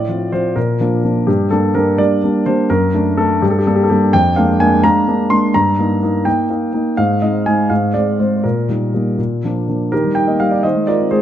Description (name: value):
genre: classical-period piano sonatina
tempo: 84 BPM (dotted quarters)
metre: 6/8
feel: straight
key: Eb major from 4.1 s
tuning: A4 = 445 Hz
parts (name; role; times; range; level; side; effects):
- warm concert grand piano; solo; 0.0-11.2 s; F2 to C6; -13 LUFS; equal; none
room: moderate recital hall reverb, RT60 1.5 s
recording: close, detailed microphones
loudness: -13 LUFS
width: side -10 dB against mid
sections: 0.0-9.9 A section; 9.9-11.2 B section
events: none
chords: 0.0 F/A; 0.6 Bb; 1.3 Gm; 2.7 D/F#; 3.4 Gm; 4.1 Bb7/F; 5.5 Eb/G; 7.0 Ab; 7.7 Ab6; 8.4 Eb/Bb; 9.2 Bb; 9.9 Eb; 10.6 Fm7/Eb